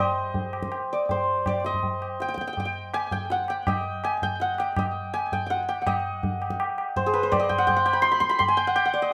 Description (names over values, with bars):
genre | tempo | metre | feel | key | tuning
indian classical, Hindustani | 164 BPM | 4/4 | straight | G raga bhairav | A4 = 441 Hz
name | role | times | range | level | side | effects
santur | melody | 0.0-9.1 s | G4 to C6 | -26 LUFS | equal | slapback echo
tabla | percussion | 0.3-9.1 s | none | -32 LUFS | equal | none
room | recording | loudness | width
moderate studio reverb, RT60 0.6 s | none | -25 LUFS | mono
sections
0.0-5.9 A section; 5.9-9.1 B section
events
speeding up 0.0-9.1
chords
none